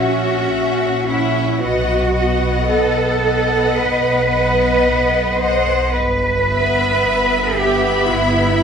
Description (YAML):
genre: classical, slow romantic movement for string orchestra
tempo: 55 BPM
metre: 4/4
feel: rubato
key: E minor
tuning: A4 = 441 Hz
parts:
  - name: rich symphonic violin section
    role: melody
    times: 0.0-8.6 s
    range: F#5 to B5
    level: -26 LUFS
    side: left 5 dB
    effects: none
  - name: dark symphonic violin section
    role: second line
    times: 0.0-8.6 s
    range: D#5 to E5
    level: -22 LUFS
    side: left 4 dB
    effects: none
  - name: rich symphonic viola section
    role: accompaniment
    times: 0.0-8.6 s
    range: B3 to C#4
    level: -22 LUFS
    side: left 1 dB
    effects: none
  - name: rich symphonic cello section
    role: bass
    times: 0.0-8.6 s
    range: E4 to C5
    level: -17 LUFS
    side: right 2 dB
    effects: none
  - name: rich symphonic double bass section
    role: bass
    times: 0.0-8.6 s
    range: G1 to B1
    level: -22 LUFS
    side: right 2 dB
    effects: none
room: wet recital hall reverb, RT60 1.5 s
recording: recorded in a church or concert hall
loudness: -14 LUFS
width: side -7 dB against mid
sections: 0.0-8.6 A section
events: none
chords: 0.0 F#7/A#; 1.6 B; 5.9 Em/G